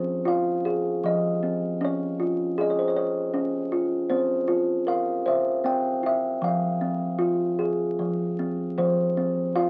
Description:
children's music, lullaby; 78 BPM; 3/4; rubato; F minor; A4 = 440 Hz
kalimba; solo; 0.0-9.7 s; F3 to G5; -25 LUFS; equal
moderate club reverb, RT60 0.5 s; very old 78 rpm record, vinyl crackle; -25 LUFS; mono
0.0-8.8 A section
0.0 Fm; 1.8 Db; 4.1 Csus4; 4.9 C7; 6.4 Fm; 8.8 F5

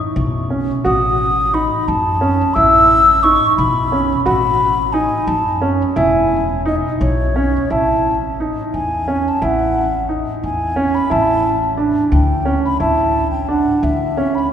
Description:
contemporary instrumental, chamber music in an uneven meter; 176 BPM (eighths); 5/8; straight; A lydian; A4 = 440 Hz
warm grand piano; arpeggios; 0.0-14.4 s; C#4 to F#4; -18 LUFS; right 2 dB
upright bass; bass; 0.2-14.4 s; E1 to F#2; -21 LUFS; left 1 dB
mellow baroque flute; melody; 0.9-14.5 s; C#5 to E6; -16 LUFS; left 1 dB
wet cathedral reverb, RT60 4.6 s; recorded in a church or concert hall, nothing above 10.3 kHz; -13 LUFS; side -9 dB against mid
0.0-7.7 A section; 7.7-14.5 B section
0.0 N.C.; 0.8 B7/A; 2.6 E5/A; 4.3 B7/A; 6.0 Emaj7; 7.7 A5; 11.1 Asus4

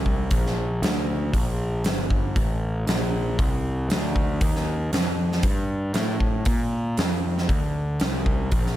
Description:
blues rock power trio and southern rock; 117 BPM; 4/4; straight; G minor; A4 = 440 Hz
fuzz picked electric bass; bass; 0.0-8.8 s; G1 to Bb2; -25 LUFS; equal; overdrive
huge arena drum kit; drums; 0.1-8.7 s; hi-hat, kick drum, snare drum; -24 LUFS; equal
little or no reverb; -22 LUFS; side -13 dB against mid
0.0-8.8 A section

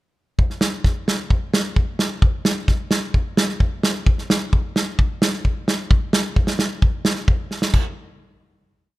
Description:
klezmer; 130 BPM; 4/4; straight
natural country drum kit; drums; 0.4-7.8 s; crash cymbal, kick drum, snare drum; -18 LUFS; equal
light reverb; minimal, uncompressed stereo recording; -18 LUFS; side -18 dB against mid
0.4-7.7 A section; 7.7-9.0 final hit
drum fill 7.5

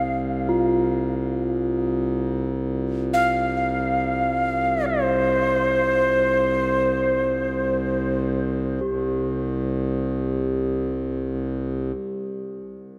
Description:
world meditative, free-time meditation music; free time; A4 = 441 Hz
breathy Native American-style cedar flute; melody; 0.0-8.2 s; C5 to F5; -25 LUFS; equal; delay
hand-pumped harmonium; drone; 0.0-11.9 s; C2; -28 LUFS; equal
bronze singing bowl; texture; 0.5-11.9 s; F4 to G4; -31 LUFS; equal
wet cathedral reverb, RT60 6.0 s; dreamy mix soaked in reverb; -23 LUFS; mono
0.0-8.8 A section; 8.8-13.0 B section

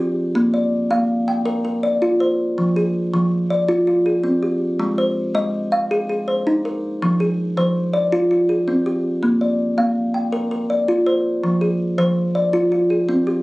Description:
southern african traditional; 108 BPM (dotted quarters); 12/8; straight; F dorian; A4 = 440 Hz
kalimba; solo; 0.0-13.4 s; F3 to G5; -17 LUFS; equal
little or no reverb; recorded on a phone in the room, studio ambience, compression; -17 LUFS; side -20 dB against mid
0.0-2.6 A section; 2.6-13.4 B section
0.4 Bb; 2.6 Fm; 4.8 Ab; 7.0 Fm; 9.2 Bb; 11.4 Fm

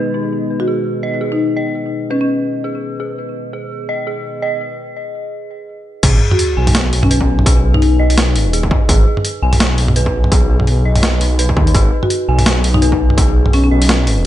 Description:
half-time drum and bass; 168 BPM; 4/4; swing 57% on 16ths, half-time; G# minor; A4 = 440 Hz
dark analog pad; sustained chords; 0.0-4.6 s; B3 to D#5; -25 LUFS; left 1 dB; chorus, sidechain pumping
dark detuned synth bell; arpeggios; 0.0-14.3 s; D#4 to G#5; -22 LUFS; right 1 dB; chorus, phaser, low-pass filter, ping-pong delay
marimba with soft mallets; melody; 0.6-2.3, 6.3-7.9, 12.0-13.7 s; C#4 to F#4; -19 LUFS; left 3 dB; ping-pong delay
dark detuned saw bass; bass; 6.0-14.3 s; D#1 to D#2; -14 LUFS; equal
boom bap sampler-style drum kit; drums; 6.0-14.2 s; crash cymbal, hi-hat, snare drum, toms; -17 LUFS; equal; overdrive, studio reverb
electronic kick drum; drums; 6.0-13.3 s; -14 LUFS; equal; distortion, studio reverb
sub drop; sound effects; 6.0-7.5 s; -20 LUFS; equal
light reverb, digital ambience; nothing above 10.8 kHz; -12 LUFS; side -13 dB against mid
0.0-6.0 A section; 6.0-14.3 B section
filter sweep on analog synth pad 0.0-6.0; break 4.6-6.0; drop 6.0-14.3; impact 6.0-7.5
0.0 G#m

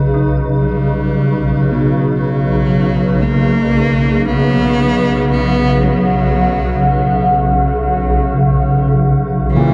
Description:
dark ambient drone; 57 BPM; 4/4; straight; B major; A4 = 435 Hz
deep dark ambient pad; sustained chords; 4.1-9.7 s; C#4 to F#5; -23 LUFS; equal; chorus, built-in reverb
swarming drone; drone; 0.0-9.7 s; B1 to C#3; -16 LUFS; equal; built-in reverb
bright concert grand piano; arpeggios; 0.1-9.7 s; A#2 to D#4; -28 LUFS; equal
rich cello; melody; 0.6-9.7 s; E3 to B3; -21 LUFS; equal; tape echo
wet huge ambient reverb, RT60 8.5 s; dark, warm production; -14 LUFS; mono
0.0-9.7 A section
fade-in on cello 0.0-9.7
0.0 Bsus2

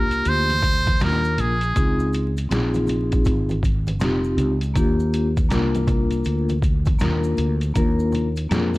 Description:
hip hop, jazz-hop; 80 BPM; 4/4; swing 63% on 16ths; Eb major; A4 = 439 Hz
trumpet with metal mute; melody; 0.0-2.1 s; Ab4 to C5; -22 LUFS; right 1 dB
vibraphone with soft mallets; accompaniment; 0.0-8.8 s; Bb3 to Bb4; -24 LUFS; left 2 dB
mellow fretless electric bass; bass; 0.0-8.8 s; F1 to F2; -23 LUFS; equal
trip hop sampler-style drum kit; drums; 0.1-8.8 s; hi-hat, kick drum, snare drum; -23 LUFS; equal
maracas and congas; percussion; 0.1-8.8 s; -34 LUFS; right 2 dB
small room ambience; vinyl crackle; -18 LUFS; side -20 dB against mid
0.0-8.8 A section
0.0 Ebmaj9; 1.8 Dbmaj9; 4.8 Ebmaj9

